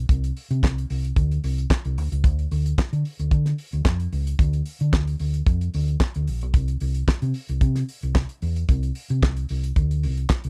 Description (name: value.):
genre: disco.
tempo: 112 BPM.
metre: 4/4.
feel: straight.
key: unclear.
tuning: A4 = 442 Hz.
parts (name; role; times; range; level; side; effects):
hollow-body short-scale fingered electric bass; bass; 0.0-10.5 s; Bb1 to D3; -25 LUFS; equal; none.
damped 70s drum kit; drums; 0.1-10.5 s; handclaps, hi-hat, kick drum, snare drum; -23 LUFS; equal; none.
room: little or no reverb.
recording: dark, warm production.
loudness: -23 LUFS.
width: mono.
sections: 0.0-10.5 A section.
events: none.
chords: none.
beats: | 0.09 0.63 1.17 1.70 | 2.24 2.78 3.31 3.85 | 4.39 4.93 5.46 6.00 | 6.54 7.08 7.62 8.15 | 8.69 9.23 9.76 10.30.